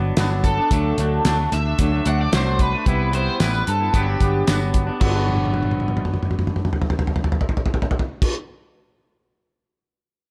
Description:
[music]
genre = indie rock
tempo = 112 BPM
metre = 4/4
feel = straight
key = G major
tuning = A4 = 444 Hz
[part]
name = twangy electric guitar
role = riff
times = 0.0-8.5 s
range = F#3 to E4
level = -28 LUFS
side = equal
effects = subtle chorus
[part]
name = picked electric bass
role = bass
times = 0.0-8.3 s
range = G1 to G2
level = -25 LUFS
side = equal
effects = none
[part]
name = cloth-damped thuddy drum kit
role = drums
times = 0.2-8.3 s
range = crash cymbal, hi-hat, kick drum, snare drum, tambourine, toms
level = -23 LUFS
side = equal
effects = none
[part]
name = overdriven semi-hollow guitar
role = melody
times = 0.4-4.4 s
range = G4 to F#5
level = -26 LUFS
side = equal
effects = analog chorus, analog delay
[sound]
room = light reverb, small room ambience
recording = none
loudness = -20 LUFS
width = mono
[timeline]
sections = 0.0-5.0 A section; 5.0-9.3 B section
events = drum fill 5.3-8.2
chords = 0.0 Gmaj7; 0.7 D; 2.9 Cmaj7; 3.9 Gmaj7

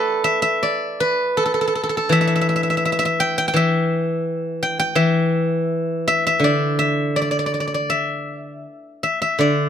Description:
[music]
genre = chinese traditional, Chinese solo plucked strings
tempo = 82 BPM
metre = 4/4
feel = rubato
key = unclear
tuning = A4 = 440 Hz
[part]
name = steel-string zither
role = solo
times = 0.0-9.7 s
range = D3 to D6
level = -17 LUFS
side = equal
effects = none
[sound]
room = light reverb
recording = none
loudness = -17 LUFS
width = side -8 dB against mid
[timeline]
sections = 0.0-9.7 A section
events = none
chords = none

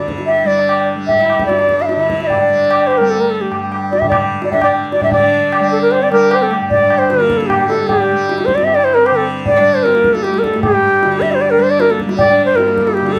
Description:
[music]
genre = indian classical, Hindustani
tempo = 151 BPM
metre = 7/4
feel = straight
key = G raga kafi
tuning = A4 = 438 Hz
[part]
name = bansuri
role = melody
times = 0.0-13.2 s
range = G4 to F5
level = -15 LUFS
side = equal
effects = none
[part]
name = dark sarangi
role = second line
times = 0.0-13.2 s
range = G3 to E4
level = -25 LUFS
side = equal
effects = none
[part]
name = tanpura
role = drone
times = 0.0-13.2 s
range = G2 to G3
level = -25 LUFS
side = equal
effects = none
[part]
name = tabla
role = percussion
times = 0.1-13.2 s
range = none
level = -21 LUFS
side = equal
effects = none
[sound]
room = moderate studio reverb, RT60 0.6 s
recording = none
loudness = -13 LUFS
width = mono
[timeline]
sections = 0.0-5.1 A section; 5.1-13.2 B section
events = speeding up 0.0-13.2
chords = none

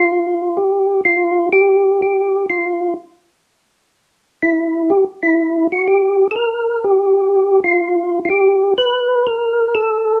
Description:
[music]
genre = jazz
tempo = 124 BPM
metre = 4/4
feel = swing 67% on 8ths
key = unclear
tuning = A4 = 440 Hz
[part]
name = percussive tonewheel organ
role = solo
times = 0.0-10.2 s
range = E4 to B4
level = -15 LUFS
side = equal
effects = slow rotary speaker, overdrive
[sound]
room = light reverb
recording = none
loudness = -15 LUFS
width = mono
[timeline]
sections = 0.0-10.2 A section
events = none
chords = none

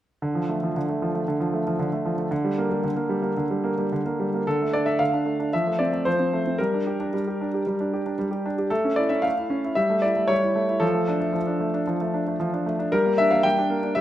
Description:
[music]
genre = classical-period piano sonatina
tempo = 114 BPM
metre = 4/4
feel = straight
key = D minor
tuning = A4 = 440 Hz
[part]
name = clear grand piano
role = solo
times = 0.2-14.0 s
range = D3 to G5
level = -22 LUFS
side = equal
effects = none
[sound]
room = moderate recital hall reverb, RT60 1.4 s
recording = none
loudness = -22 LUFS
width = side -12 dB against mid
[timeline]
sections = 0.2-4.5 A section; 4.5-14.0 B section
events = none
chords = 0.2 Dm; 2.3 Gm/D; 4.5 Dm; 5.5 F; 6.6 Gm; 8.7 A; 9.8 A7/G; 10.8 Dm/F; 12.9 Gm7

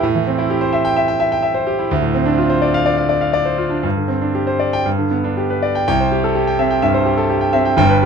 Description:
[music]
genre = classical, virtuoso piano study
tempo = 117-130 BPM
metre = 4/4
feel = rubato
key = C major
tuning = A4 = 443 Hz
[part]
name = bright concert grand piano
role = solo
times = 0.0-8.1 s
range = G1 to G5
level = -14 LUFS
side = equal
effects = none
[sound]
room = little or no reverb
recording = close, detailed microphones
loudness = -14 LUFS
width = side -6 dB against mid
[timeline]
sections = 0.0-5.9 A section; 5.9-8.1 B section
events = none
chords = 0.0 Am7; 1.9 Dm7; 3.8 Gsus4; 4.9 G; 5.9 C

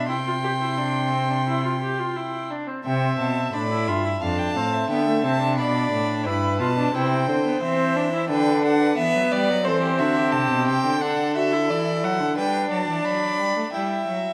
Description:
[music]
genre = classical, baroque-style fugue for string quartet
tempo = 88 BPM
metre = 4/4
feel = straight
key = C major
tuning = A4 = 444 Hz
[part]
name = warm violin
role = melody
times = 0.0-14.3 s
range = C5 to C6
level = -29 LUFS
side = equal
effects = none
[part]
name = rich violin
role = second line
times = 0.0-14.3 s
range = F#4 to G5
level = -30 LUFS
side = equal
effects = none
[part]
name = warm viola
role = accompaniment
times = 0.0-14.3 s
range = A3 to G4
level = -28 LUFS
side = equal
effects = none
[part]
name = rich cello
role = bass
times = 0.0-14.3 s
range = F2 to A3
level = -27 LUFS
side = equal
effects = none
[sound]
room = moderate recital hall reverb, RT60 1.3 s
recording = none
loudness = -23 LUFS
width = mono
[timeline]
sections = 0.0-2.9 A section; 2.9-13.7 B section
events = none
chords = 0.1 C; 4.2 Dm7/F; 5.6 G; 6.9 C; 8.3 G/D; 9.7 Am7; 11.0 D; 12.4 G; 13.7 Em

